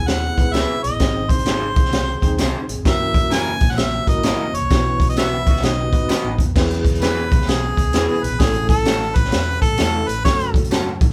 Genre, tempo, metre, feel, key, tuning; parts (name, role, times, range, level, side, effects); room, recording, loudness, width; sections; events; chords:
uptempo 1960s-style soul; 130 BPM; 4/4; swing 64% on 8ths; E major; A4 = 441 Hz
clear harmonica; melody; 0.0-10.5 s; G#4 to G#5; -25 LUFS; equal
percussive tonewheel organ; sustained chords; 0.0-11.1 s; D#3 to A4; -32 LUFS; equal; fast rotary speaker
vintage muted fingered electric bass; bass; 0.0-11.1 s; F#1 to A2; -27 LUFS; equal
raw garage drum kit; drums; 0.1-11.1 s; crash cymbal, hi-hat, kick drum, snare drum; -21 LUFS; equal
tambourine; percussion; 0.1-10.8 s; -40 LUFS; equal
tine electric piano; accompaniment; 0.4-10.8 s; A3 to B#4; -28 LUFS; equal; fast tremolo
electric guitar through a small old amp; stabs; 0.5-10.9 s; F#3 to B#4; -28 LUFS; equal
bright saxophone section; second line; 5.2-5.8 s; B3 to F#4; -35 LUFS; equal
light reverb; band playing live in one room; -18 LUFS; mono
0.0-6.6 A section; 6.6-11.1 B section
band accent 4.7-6.6; harmonica solo 6.6-11.1
0.0 E; 1.0 G#; 2.9 F#7; 4.7 Bsus4; 5.6 B; 6.6 E; 8.4 A; 10.2 F#m